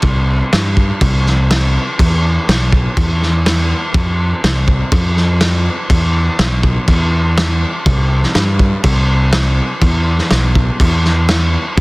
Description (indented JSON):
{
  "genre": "rock, shoegaze and dream pop",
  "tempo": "123 BPM",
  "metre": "4/4",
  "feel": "straight",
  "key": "E minor",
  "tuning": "A4 = 440 Hz",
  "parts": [
    { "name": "fuzz fingered electric bass", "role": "bass", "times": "0.0-11.8 s", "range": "B1 to G2", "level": "-14 LUFS", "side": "equal", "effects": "overdrive" },
    { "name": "loose indie drum kit", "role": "drums", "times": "0.0-11.8 s", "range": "crash cymbal, kick drum, snare drum", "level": "-14 LUFS", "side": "equal", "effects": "none" }
  ],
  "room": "little or no reverb",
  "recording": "dense, heavily limited modern master",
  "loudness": "-11 LUFS",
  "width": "side -25 dB against mid",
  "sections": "0.0-11.8 A section",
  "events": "none",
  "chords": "none"
}